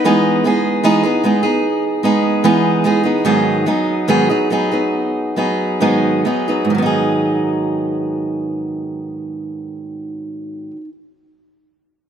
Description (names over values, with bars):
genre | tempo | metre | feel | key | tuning
pop | 66-76 BPM | 4/4 | straight | G# minor | A4 = 440 Hz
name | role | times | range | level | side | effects
picked steel-string acoustic guitar | solo | 0.0-10.9 s | G#2 to G#4 | -15 LUFS | right 1 dB | none
room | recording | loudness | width
moderate lush hall reverb, RT60 2.5 s | none | -14 LUFS | side -8 dB against mid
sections
0.0-6.7 A section; 6.7-10.4 B section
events
slowing down 0.0-6.7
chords
0.0 Emaj7; 3.2 G#m7